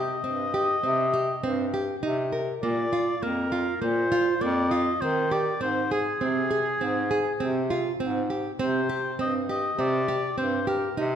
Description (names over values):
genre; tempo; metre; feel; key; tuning
contemporary instrumental, chamber music in an uneven meter; 101 BPM; 5/4; straight; C minor; A4 = 440 Hz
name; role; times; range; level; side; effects
warm oboe; melody; 0.0-11.0 s; Ab4 to Eb5; -28 LUFS; left 1 dB; none
nylon-string guitar; arpeggios; 0.0-11.2 s; Bb3 to Bb4; -28 LUFS; right 3 dB; none
clear bass clarinet; bass; 0.0-11.2 s; F2 to Eb3; -28 LUFS; left 1 dB; none
room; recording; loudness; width
moderate scoring stage reverb, RT60 1.6 s; minimal, uncompressed stereo recording; -24 LUFS; side -8 dB against mid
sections
0.0-11.2 A section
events
none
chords
0.0 Cm; 2.6 Bbsus2; 5.6 Fm/Ab (rootless); 8.6 C5